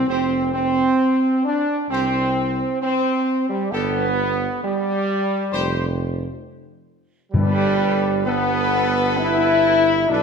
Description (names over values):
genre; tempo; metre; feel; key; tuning
classical; 66 BPM; 4/4; straight; G mixolydian; A4 = 440 Hz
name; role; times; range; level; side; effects
clear trumpet section; melody; 0.0-10.2 s; G4 to C5; -27 LUFS; left 2 dB; none
bright trombone section; sustained chords; 0.0-10.2 s; G3 to E4; -20 LUFS; right 2 dB; none
warm French horn section; sustained chords; 0.0-10.2 s; G3 to E4; -25 LUFS; left 5 dB; none
mellow tuba; bass; 0.0-10.2 s; F1 to C2; -26 LUFS; right 3 dB; none
timpani; percussion; 7.3-8.7 s; G2; -22 LUFS; left 2 dB; none
room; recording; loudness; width
wet scoring stage reverb, RT60 1.5 s; none; -18 LUFS; side -6 dB against mid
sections
0.0-10.2 A section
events
none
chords
0.1 F5; 3.7 G; 5.5 Fsus2; 7.3 Gadd9